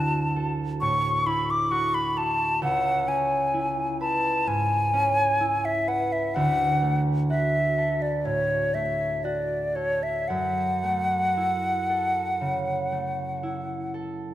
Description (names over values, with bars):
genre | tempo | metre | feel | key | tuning
classical, impressionist duo for flute and harp | 55-67 BPM | 4/4 | rubato | F# minor | A4 = 440 Hz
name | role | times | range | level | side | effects
hollow concert flute | melody | 0.0-13.9 s | C#5 to D6 | -24 LUFS | left 1 dB | none
concert harp | accompaniment | 0.0-14.3 s | C#2 to B4 | -28 LUFS | right 2 dB | none
room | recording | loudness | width
moderate concert hall reverb, RT60 2.4 s | none | -23 LUFS | side -13 dB against mid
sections
0.0-14.3 A section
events
none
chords
0.0 Dadd9; 2.6 C#m7; 6.4 Dmaj7; 10.3 F#m7